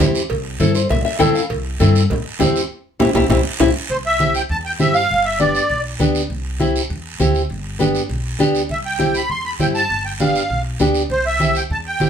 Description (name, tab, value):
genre	latin, cumbia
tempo	200 BPM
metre	4/4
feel	straight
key	C major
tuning	A4 = 440 Hz
part	nylon-string guitar	accompaniment	0.0-12.1 s	B3 to G5	-18 LUFS	left 2 dB	none
part	upright bass	bass	0.0-12.1 s	G1 to G2	-22 LUFS	equal	none
part	congas	percussion	0.0-12.1 s	none	-22 LUFS	right 2 dB	none
part	cowbell and timbales	percussion	0.0-3.7 s	none	-27 LUFS	right 6 dB	none
part	guiro	percussion	0.0-12.1 s	none	-28 LUFS	right 5 dB	none
part	musette accordion	melody	3.9-5.8, 8.7-12.1 s	C5 to C6	-18 LUFS	right 1 dB	none
room	wet studio ambience, RT60 0.4 s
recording	band playing live in one room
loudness	-16 LUFS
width	side -8 dB against mid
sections	0.0-3.9 A section; 3.9-12.1 B section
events	nylon-string guitar fill 0.6-1.5; drum fill 2.7-3.9; band accent 2.7-3.9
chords	0.0 C; 5.1 G; 6.3 C; 7.5 G; 8.7 C; 9.9 G7; 11.1 C